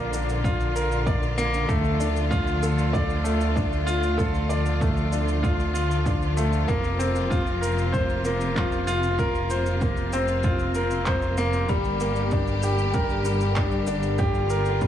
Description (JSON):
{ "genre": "piano and strings electronica", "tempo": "96 BPM", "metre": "4/4", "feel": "straight", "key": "unclear", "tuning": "A4 = 443 Hz", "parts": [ { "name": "rich studio string section", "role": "sustained chords", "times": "0.0-14.9 s", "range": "C3 to G4", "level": "-29 LUFS", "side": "equal", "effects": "sidechain pumping" }, { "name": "bright concert grand piano", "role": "riff", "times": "0.0-14.9 s", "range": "G3 to D5", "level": "-26 LUFS", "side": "left 1 dB", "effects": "tape echo" }, { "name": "dark detuned saw bass", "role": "bass", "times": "0.0-14.9 s", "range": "F1 to D2", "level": "-27 LUFS", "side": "equal", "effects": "sidechain pumping" }, { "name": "electronic shaker and handclaps", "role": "drums", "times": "0.1-14.9 s", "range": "none", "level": "-38 LUFS", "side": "right 1 dB", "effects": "overdrive, small room ambience" }, { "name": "electronic kick drum", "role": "drums", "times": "0.4-14.9 s", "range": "none", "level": "-26 LUFS", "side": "equal", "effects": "overdrive, small room ambience" } ], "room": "light reverb, studio reverb", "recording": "small room ambience", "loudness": "-21 LUFS", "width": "side -10 dB against mid", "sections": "0.0-14.9 A section", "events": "none", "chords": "0.0 Bb; 1.7 Dm; 6.7 Fsus4; 11.7 Gm", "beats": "0.44 1.06 | 1.69 2.31 2.94 3.56 | 4.19 4.82 5.44 6.07 | 6.69 7.32 7.94 8.56 | 9.19 9.81 10.44 11.06 | 11.69 12.31 12.94 13.56 | 14.19 14.81" }